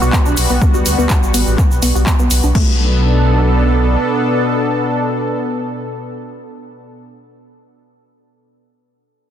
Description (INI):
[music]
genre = progressive house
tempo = 124 BPM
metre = 4/4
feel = straight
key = B minor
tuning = A4 = 440 Hz
[part]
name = lush unison pad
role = sustained chords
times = 0.0-7.0 s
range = B2 to A4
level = -18 LUFS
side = equal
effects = chorus, sidechain pumping
[part]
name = wide unison pluck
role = arpeggios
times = 0.0-2.8 s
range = A3 to G4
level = -22 LUFS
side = equal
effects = sidechain pumping, dub echo
[part]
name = dark detuned saw bass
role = bass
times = 0.0-4.0 s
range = A1 to D2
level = -15 LUFS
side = equal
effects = sidechain pumping
[part]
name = egg shaker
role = percussion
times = 0.0-2.5 s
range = none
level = -25 LUFS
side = right 6 dB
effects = none
[part]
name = deep house drum kit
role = drums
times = 0.1-2.7 s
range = crash cymbal, handclaps, hi-hat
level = -21 LUFS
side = left 2 dB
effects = none
[part]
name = electronic kick drum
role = drums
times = 0.1-2.7 s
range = none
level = -14 LUFS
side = equal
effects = none
[sound]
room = light reverb, digital ambience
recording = dense, heavily limited modern master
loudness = -12 LUFS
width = side -10 dB against mid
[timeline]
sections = 0.0-2.6 A section; 2.6-6.4 B section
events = filter sweep on synth pluck 0.0-2.6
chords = 0.0 Gmaj7/B; 2.6 Bm7